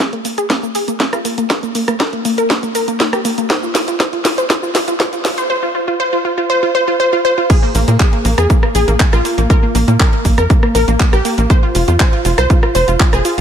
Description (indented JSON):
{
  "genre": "progressive house",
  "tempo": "120 BPM",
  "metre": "4/4",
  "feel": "straight",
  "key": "unclear",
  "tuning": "A4 = 435 Hz",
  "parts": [
    { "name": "wide unison pluck", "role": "arpeggios", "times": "0.0-13.4 s", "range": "Bb3 to C5", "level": "-16 LUFS", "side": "equal", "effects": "sidechain pumping, tape echo" },
    { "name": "electronic kick drum", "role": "drums", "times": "0.0-13.1 s", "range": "none", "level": "-13 LUFS", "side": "equal", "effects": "high-pass filter on kick, high-pass filter on room" },
    { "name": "house drum kit", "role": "drums", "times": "0.0-13.4 s", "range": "crash cymbal, handclaps, hi-hat, rim click, shaker, snare drum", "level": "-18 LUFS", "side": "equal", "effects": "none" },
    { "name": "tight sequencer bass", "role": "bass", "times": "7.7-13.4 s", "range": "F1 to Bb2", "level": "-14 LUFS", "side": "equal", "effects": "tube saturation, sidechain pumping" }
  ],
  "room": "light reverb",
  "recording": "none",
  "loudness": "-12 LUFS",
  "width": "side -8 dB against mid",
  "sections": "0.0-7.5 A section; 7.5-13.4 B section",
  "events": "build-up 0.0-7.5; drum fill 0.0-5.5; filter sweep on synth pluck 0.0-7.5; drop 7.5-13.4",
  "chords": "0.0 N.C.; 7.5 Bb5; 11.5 F5"
}